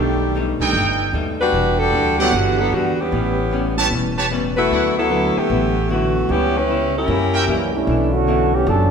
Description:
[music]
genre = jazz, big band swing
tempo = 152 BPM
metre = 4/4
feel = swing 64% on 8ths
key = unclear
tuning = A4 = 439 Hz
[part]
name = warm saxophone section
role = melody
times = 0.0-7.7 s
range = D3 to B4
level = -19 LUFS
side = left 1 dB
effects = none
[part]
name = archtop guitar, miked and amplified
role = accompaniment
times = 0.0-8.9 s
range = A2 to G4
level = -25 LUFS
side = left 2 dB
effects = none
[part]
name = clear concert grand piano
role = accompaniment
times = 0.0-7.3 s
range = Eb3 to F#4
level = -28 LUFS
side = right 4 dB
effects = none
[part]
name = upright bass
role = bass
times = 0.0-8.9 s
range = E1 to F#2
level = -22 LUFS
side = equal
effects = none
[part]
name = bright trumpet section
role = stabs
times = 0.6-4.9, 7.3-7.4 s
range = D#4 to A5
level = -22 LUFS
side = right 3 dB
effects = none
[part]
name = warm trombone section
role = second line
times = 7.5-8.9 s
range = D3 to A4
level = -18 LUFS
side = right 2 dB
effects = none
[sound]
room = wet recital hall reverb, RT60 1.7 s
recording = recorded in a church or concert hall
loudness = -16 LUFS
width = side -6 dB against mid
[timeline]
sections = 0.0-7.9 A section; 7.9-8.9 B section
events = trombone section solo 7.9-8.9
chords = 0.0 B7alt; 1.5 Em9; 3.1 A9; 4.7 D69; 6.3 C#m7b5; 7.1 F#7b9; 7.9 Bm11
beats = 0.35 0.75 1.14 | 1.54 1.94 2.33 2.73 | 3.12 3.52 3.92 4.31 | 4.71 5.10 5.50 5.90 | 6.29 6.69 7.08 7.48 | 7.88 8.27 8.67

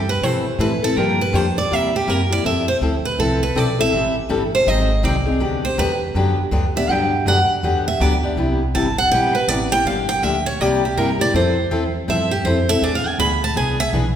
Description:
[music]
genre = acoustic string swing (jazz manouche)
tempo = 162 BPM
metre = 4/4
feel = swing 63% on 8ths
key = G major, C major from 8.4 s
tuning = A4 = 440 Hz
[part]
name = picked steel-string acoustic guitar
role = melody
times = 0.0-13.9 s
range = G4 to B5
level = -20 LUFS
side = right 2 dB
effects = none
[part]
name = upright bass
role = bass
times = 0.0-14.2 s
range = G1 to B2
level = -22 LUFS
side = equal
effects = none
[part]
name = picked steel-string acoustic guitar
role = accompaniment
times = 0.2-14.1 s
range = C3 to A4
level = -21 LUFS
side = left 2 dB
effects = none
[sound]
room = wet recital hall reverb, RT60 1.7 s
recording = recorded in a church or concert hall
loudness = -16 LUFS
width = side -9 dB against mid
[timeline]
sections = 0.0-8.4 A section; 8.4-14.2 A section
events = steel-string acoustic guitar solo 0.0-14.2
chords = 0.0 Am9; 1.0 Gm7; 1.7 C7; 2.5 Fmaj7; 3.9 Am7; 4.7 Ab7#11; 5.4 Gmaj7; 8.4 Cmaj7; 9.9 Gm7; 10.6 C7; 11.3 Fmaj9; 12.8 E7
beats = 0.23 0.60 | 0.97 1.34 1.71 2.08 | 2.45 2.82 3.19 3.56 | 3.93 4.30 4.67 5.04 | 5.42 5.79 6.16 6.53 | 6.90 7.27 7.64 8.01 | 8.38 8.75 9.12 9.49 | 9.86 10.23 10.60 10.97 | 11.34 11.71 12.08 12.45 | 12.82 13.19 13.56 13.93

